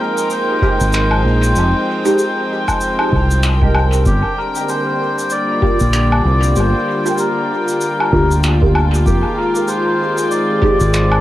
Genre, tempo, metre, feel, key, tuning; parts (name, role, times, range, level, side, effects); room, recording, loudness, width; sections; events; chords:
ambient dub; 96 BPM; 4/4; swing 59% on 16ths; F dorian; A4 = 440 Hz
melodica; melody; 0.0-11.2 s; G4 to D5; -20 LUFS; left 1 dB; cassette tape, dub echo
warm chamber string section; sustained chords; 0.0-11.2 s; D3 to G5; -20 LUFS; left 1 dB; cassette tape
backwards swelling texture; texture; 0.0-11.2 s; Bb4 to G5; -29 LUFS; right 5 dB; built-in reverb, cassette tape
cabasa, finger snaps and woodblock; drums; 0.2-11.2 s; -24 LUFS; left 1 dB; cassette tape, dub echo
filtered dub chord stab; stabs; 0.6-10.8 s; Ab3 to G4; -21 LUFS; right 1 dB; phaser, ensemble chorus, vintage 12-bit sampler grit, cassette tape, dub echo
electronic kick drum; drums; 0.6-10.8 s; -19 LUFS; equal; cassette tape
fingered electric bass; bass; 0.8-11.2 s; F1 to D2; -14 LUFS; equal
light reverb, small room ambience; home recording on cassette; -13 LUFS; side -14 dB against mid
0.0-11.2 A section
0.0 Fm9; 4.1 Gm7; 9.1 Fm9